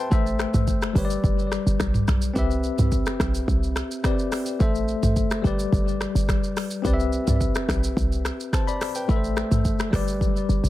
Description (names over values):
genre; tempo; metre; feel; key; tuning
afrobeats; 107 BPM; 4/4; straight; C major; A4 = 438 Hz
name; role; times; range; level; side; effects
bell-like tine electric piano; accompaniment; 0.0-10.7 s; G3 to C6; -26 LUFS; left 3 dB; medium stereo tremolo, tape echo
short 808-style bass; bass; 0.1-10.7 s; G1 to C2; -24 LUFS; equal; none
afro-pop drum kit; drums; 0.1-10.7 s; finger snaps, hi-hat, kick drum, rim click, shaker, toms; -25 LUFS; equal; none
room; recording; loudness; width
digital ambience; echo-heavy mix; -21 LUFS; side -15 dB against mid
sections
0.0-10.7 A section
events
drum fill 10.2-10.7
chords
0.1 Am; 1.0 G; 2.4 Cmaj7; 4.6 Am; 5.4 G; 6.8 Cmaj7; 9.1 Am; 9.9 G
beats
| 0.12 0.68 1.24 1.80 | 2.36 2.92 3.48 4.04 | 4.60 5.17 5.72 6.29 | 6.85 7.41 7.97 8.53 | 9.09 9.65 10.21